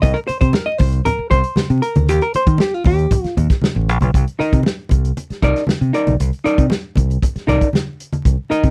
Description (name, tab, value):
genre	funk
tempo	117 BPM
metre	4/4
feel	straight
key	C minor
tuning	A4 = 439 Hz
part	hollow-body jazz guitar	accompaniment	0.0-8.7 s	Eb4 to Eb5	-20 LUFS	equal	none
part	fingered electric bass	bass	0.0-8.7 s	A1 to Eb3	-19 LUFS	equal	none
part	warm soul drum kit	drums	0.0-8.7 s	hi-hat, kick drum, snare drum	-20 LUFS	equal	none
part	congas	percussion	0.3-8.2 s	none	-26 LUFS	equal	none
room	little or no reverb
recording	vinyl crackle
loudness	-17 LUFS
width	mono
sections	0.0-4.1 A section; 4.1-8.7 B section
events	hollow-body jazz guitar solo 0.0-4.1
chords	0.0 Cm; 2.1 Eb; 4.1 Cm9